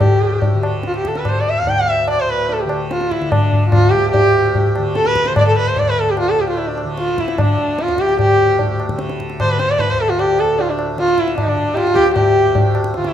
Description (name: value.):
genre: indian classical, Hindustani.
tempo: 148 BPM.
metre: 5/4.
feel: straight.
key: D raga bhimpalasi.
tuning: A4 = 440 Hz.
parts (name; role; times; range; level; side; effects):
warm sarangi; melody; 0.0-13.1 s; D4 to G5; -16 LUFS; equal; none.
tanpura; drone; 0.0-13.1 s; D2 to D3; -25 LUFS; right 1 dB; none.
tabla; percussion; 0.0-13.1 s; none; -19 LUFS; left 1 dB; none.
room: moderate recital hall reverb, RT60 1.3 s.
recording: minimal, uncompressed stereo recording.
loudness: -14 LUFS.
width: side -10 dB against mid.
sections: 0.0-13.1 A section.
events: speeding up 0.0-13.1.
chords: none.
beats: | 0.01 0.42 0.84 1.25 1.67 | 2.08 2.49 2.90 3.31 3.73 | 4.13 4.54 4.95 5.36 5.76 | 6.17 6.58 6.98 7.38 7.79 | 8.19 8.59 8.99 9.39 9.79 | 10.19 10.58 10.98 11.38 11.77 | 12.17 12.56 12.96.